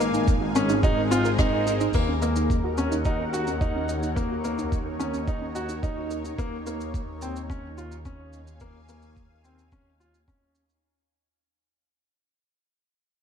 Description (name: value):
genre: piano and strings electronica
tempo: 108 BPM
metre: 4/4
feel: straight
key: Eb dorian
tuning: A4 = 440 Hz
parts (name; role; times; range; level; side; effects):
- lush unison pad; sustained chords; 0.0-10.8 s; Ab3 to Ab5; -32 LUFS; right 1 dB; chorus, phaser, sidechain pumping
- warbly dusty pluck; arpeggios; 0.0-6.3 s; C4 to Eb5; -33 LUFS; right 5 dB; chorus, sidechain pumping, ping-pong delay
- clear baby grand piano; riff; 0.0-10.6 s; Bb3 to Gb4; -28 LUFS; left 1 dB; ping-pong delay
- clear studio double bass section; bass; 0.0-10.8 s; Ab1 to Eb2; -30 LUFS; left 1 dB; sidechain pumping
- jazz brush drum kit; drums; 0.0-10.8 s; crash cymbal, rim click, shaker; -39 LUFS; right 2 dB; none
- electronic kick drum; drums; 0.3-10.4 s; none; -25 LUFS; equal; overdrive
room: light reverb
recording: dark, warm production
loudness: -23 LUFS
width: side -8 dB against mid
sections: 0.0-1.9 A section; 1.9-10.8 B section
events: drop 0.0-1.9; fade-out 1.9-10.8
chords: 0.0 Abadd9; 1.9 Ebm7; 6.4 Dbadd9/Eb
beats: 0.28 0.83 1.39 | 1.94 2.50 3.05 3.61 | 4.17 4.72 5.28 5.83 | 6.39 6.94 7.50 8.05 | 8.61 9.16 9.72 10.28